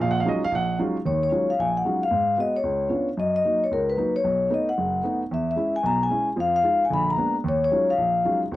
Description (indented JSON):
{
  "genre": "jazz",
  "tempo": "225 BPM",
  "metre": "4/4",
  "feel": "swing 61% on 8ths",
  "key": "Eb minor",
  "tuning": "A4 = 440 Hz",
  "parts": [
    { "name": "dark grand piano", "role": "accompaniment", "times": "0.0-8.6 s", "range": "F#1 to Gb5", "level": "-25 LUFS", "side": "right 2 dB", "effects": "none" },
    { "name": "vibraphone with soft mallets", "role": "melody", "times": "1.1-8.4 s", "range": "Bb4 to Cb6", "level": "-22 LUFS", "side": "left 2 dB", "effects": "none" }
  ],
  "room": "little or no reverb",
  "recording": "dry, close 1970s-style studio recording",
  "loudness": "-21 LUFS",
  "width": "side -15 dB against mid",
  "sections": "0.0-1.1 A section; 1.1-8.6 B section",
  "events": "none",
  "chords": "0.0 Ebm11; 2.1 Abm7; 2.6 Db7b9; 3.2 Gb6; 4.2 B7; 5.3 E6; 6.4 Fm7; 6.9 Bb7b9; 7.4 Ebm11"
}